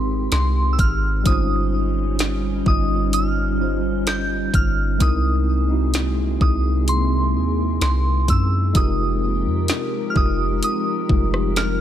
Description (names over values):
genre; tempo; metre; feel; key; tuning
contemporary R&B; 64 BPM; 4/4; straight; unclear; A4 = 440 Hz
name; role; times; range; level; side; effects
soft synth bell; melody; 0.0-11.8 s; C6 to G6; -26 LUFS; right 1 dB; chorus, ping-pong delay
mellow tine electric piano; accompaniment; 0.0-11.8 s; G3 to Eb5; -25 LUFS; equal; medium stereo tremolo
glassy FM pad; sustained chords; 0.0-11.8 s; C3 to Bb4; -28 LUFS; equal; ensemble chorus, built-in reverb, sidechain pumping
soft 808-style bass; bass; 0.0-11.8 s; F1 to Gb2; -21 LUFS; equal; none
smooth R&B drum kit; drums; 0.3-11.8 s; hi-hat, kick drum, rim click, snare drum; -21 LUFS; equal; none
room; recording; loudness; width
little or no reverb; none; -17 LUFS; side -10 dB against mid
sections
0.0-11.8 A section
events
none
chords
0.0 Abmaj9; 1.3 Eb13/G; 5.0 C7alt; 8.8 Fm11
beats
0.32 | 1.25 2.19 3.13 4.07 | 5.00 5.94 6.88 7.82 | 8.75 9.69 10.63 11.56